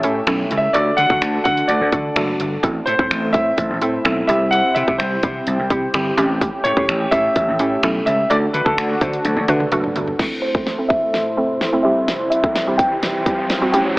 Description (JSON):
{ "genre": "dance-pop", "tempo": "127 BPM", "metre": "4/4", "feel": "straight", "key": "A dorian", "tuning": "A4 = 440 Hz", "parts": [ { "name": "bright concert grand piano", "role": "melody", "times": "0.0-13.8 s", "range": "A4 to G5", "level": "-20 LUFS", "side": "equal", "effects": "low-pass filter, tape echo" }, { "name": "mallet-like synth pluck", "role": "accompaniment", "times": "0.0-14.0 s", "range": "G3 to C5", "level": "-22 LUFS", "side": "right 1 dB", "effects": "chorus, sidechain pumping, low-pass filter, tape echo" }, { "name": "lush unison pad", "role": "sustained chords", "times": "0.0-14.0 s", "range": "A2 to C#5", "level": "-24 LUFS", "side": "equal", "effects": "chorus, sidechain pumping, low-pass filter" }, { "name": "vintage slap bass", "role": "bass", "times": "0.0-10.1 s", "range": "F#1 to D3", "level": "-24 LUFS", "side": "equal", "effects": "sidechain pumping" }, { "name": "pop drum kit", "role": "drums", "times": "0.0-13.8 s", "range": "crash cymbal, finger snaps, hi-hat, kick drum, snare drum, toms", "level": "-22 LUFS", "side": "equal", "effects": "none" }, { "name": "riser", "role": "sound effects", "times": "11.5-14.0 s", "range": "none", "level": "-28 LUFS", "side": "equal", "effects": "none" } ], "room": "moderate plate reverb, RT60 2.5 s", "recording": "echo-heavy mix, AM radio sound", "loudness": "-16 LUFS", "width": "side -22 dB against mid", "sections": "0.0-10.2 A section; 10.2-14.0 B section", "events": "drum fill 9.2-10.2, 10.2-14.0; build-up 10.2-14.0; riser 11.5-14.0", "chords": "0.0 A7; 0.7 D; 2.6 Am; 4.3 C; 6.2 A7; 8.3 D; 10.2 Am; 11.8 C", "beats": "0.27 | 0.75 1.22 1.69 2.16 | 2.63 3.11 3.58 4.05 | 4.53 5.00 5.47 5.94 | 6.42 6.89 7.36 7.83 | 8.30 8.78 9.25 9.72 | 10.19 10.67 11.14 11.61 | 12.08 12.56 13.03 13.50 | 13.97" }